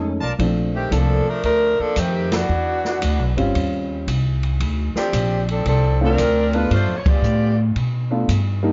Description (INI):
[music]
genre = jazz, big band swing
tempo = 114 BPM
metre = 4/4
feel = swing 67% on 8ths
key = Bb major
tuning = A4 = 440 Hz
[part]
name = clear saxophone section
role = melody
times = 0.0-7.6 s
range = Eb3 to D5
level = -23 LUFS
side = equal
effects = none
[part]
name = clear concert grand piano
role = accompaniment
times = 0.0-8.7 s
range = F3 to F4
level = -25 LUFS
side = equal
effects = none
[part]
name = upright bass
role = bass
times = 0.0-8.7 s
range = G1 to B2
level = -23 LUFS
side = equal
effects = none
[part]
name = open jazz drum kit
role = drums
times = 0.4-8.4 s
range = hi-hat, kick drum, ride cymbal, snare drum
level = -29 LUFS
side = equal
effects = none
[sound]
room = moderate large studio reverb, RT60 0.8 s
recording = nothing above 7.5 kHz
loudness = -20 LUFS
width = mono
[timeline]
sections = 0.4-8.7 A section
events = band accent 2.2, 7.0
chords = 0.4 Bbmaj7; 2.5 Em7; 3.5 Eb13; 4.6 Dm7; 6.7 G7